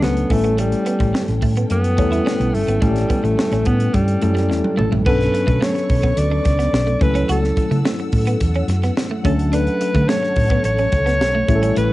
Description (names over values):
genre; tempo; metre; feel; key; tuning
polished 1980s jazz-funk pop; 107 BPM; 4/4; straight; B minor; A4 = 440 Hz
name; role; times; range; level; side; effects
warm alto saxophone; melody; 0.0-11.9 s; G3 to D5; -22 LUFS; equal; cassette tape
mellow tine electric piano; accompaniment; 0.0-11.9 s; F#3 to A4; -22 LUFS; left 2 dB; medium stereo tremolo, lush chorus, cassette tape
warm symphonic string section; sustained chords; 0.0-11.9 s; D3 to E6; -34 LUFS; left 1 dB; cassette tape
electric guitar at the edge of break-up; riff; 0.0-11.9 s; G3 to F#4; -26 LUFS; right 4 dB; analog chorus, cassette tape
hollow-body short-scale fingered electric bass; bass; 0.0-11.9 s; G1 to D3; -19 LUFS; equal; none
crisp fusion drum kit; drums; 0.0-11.9 s; crash cymbal, hi-hat, kick drum, snare drum, toms; -22 LUFS; equal; cassette tape
room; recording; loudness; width
light reverb; home recording on cassette, nothing above 10.9 kHz; -15 LUFS; side -17 dB against mid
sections
0.0-5.1 A section; 5.1-11.9 B section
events
drum fill 4.5-5.1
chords
0.3 A7; 5.1 Bm9; 7.0 F#m7/C#; 9.2 Dmaj7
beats
0.03 | 0.58 1.14 1.70 2.26 | 2.82 3.38 3.94 4.50 | 5.06 5.62 6.17 6.73 | 7.29 7.85 8.41 8.97 | 9.53 10.09 10.65 11.21 | 11.76